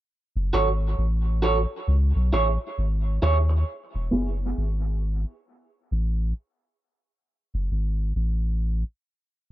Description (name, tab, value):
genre	dub reggae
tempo	67 BPM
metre	4/4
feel	swing 61% on 16ths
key	E major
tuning	A4 = 440 Hz
part	soft dub sub bass	bass	0.4-8.8 s	E1 to D#2	-23 LUFS	equal	none
part	electric guitar at the edge of break-up	accompaniment	0.5-4.3 s	B3 to C#5	-26 LUFS	right 3 dB	harmonic tremolo, low-pass filter, dub echo
room	digital ambience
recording	none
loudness	-23 LUFS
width	side -14 dB against mid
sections	0.0-3.7 A section; 3.7-9.5 B section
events	break 3.7-9.5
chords	0.1 F#m; 1.9 C#m; 3.7 E; 5.5 N.C.